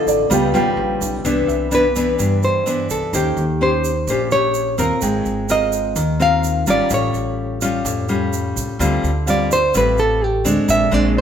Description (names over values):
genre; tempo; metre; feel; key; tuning
bossa nova; 127 BPM; 4/4; straight; unclear; A4 = 441 Hz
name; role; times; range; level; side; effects
nylon-string guitar; accompaniment; 0.0-11.2 s; G2 to C5; -19 LUFS; left 2 dB; none
warm grand piano; accompaniment; 0.0-10.9 s; F3 to Bb5; -23 LUFS; right 6 dB; none
upright bass; bass; 0.1-11.2 s; Ab1 to G2; -23 LUFS; equal; none
tube shaker; percussion; 0.1-11.2 s; none; -30 LUFS; right 7 dB; none
nylon-string guitar; melody; 1.7-11.2 s; G4 to F5; -18 LUFS; right 1 dB; none
room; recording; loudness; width
moderate large studio reverb, RT60 1.2 s; band playing live in one room; -15 LUFS; side -8 dB against mid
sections
0.0-1.2 A section; 1.2-11.2 A section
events
grand piano solo 0.0-1.2; nylon-string guitar solo 1.2-11.2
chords
0.3 Db7#11; 1.2 Cmaj9; 3.1 Eb13; 5.0 Ab69; 6.9 A7b13; 8.8 Dm7; 10.7 Bb9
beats
0.30 0.78 | 1.25 1.72 2.19 2.66 | 3.13 3.61 4.08 4.55 | 5.02 5.49 5.97 6.44 | 6.91 7.38 7.86 8.33 | 8.80 9.27 9.74 10.22 | 10.69 11.16